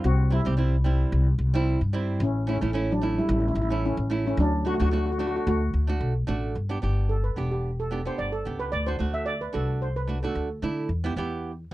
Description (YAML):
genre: calypso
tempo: 110 BPM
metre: 4/4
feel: swing 54% on 16ths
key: G major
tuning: A4 = 439 Hz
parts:
  - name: steel pan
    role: melody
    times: 0.0-10.5 s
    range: F#3 to E5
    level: -29 LUFS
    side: equal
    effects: none
  - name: flamenco guitar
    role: accompaniment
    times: 0.0-11.7 s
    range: G3 to G4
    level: -30 LUFS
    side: right 4 dB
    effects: none
  - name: upright bass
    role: bass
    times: 0.0-11.7 s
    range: E1 to D3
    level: -25 LUFS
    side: equal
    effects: none
room: little or no reverb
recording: dry, close 1970s-style studio recording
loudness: -23 LUFS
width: side -17 dB against mid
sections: 0.0-6.6 A section; 6.6-11.7 B section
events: steel pan solo 6.6-11.7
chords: 0.0 C; 2.2 A; 4.4 D; 6.6 G; 8.7 D; 10.9 Em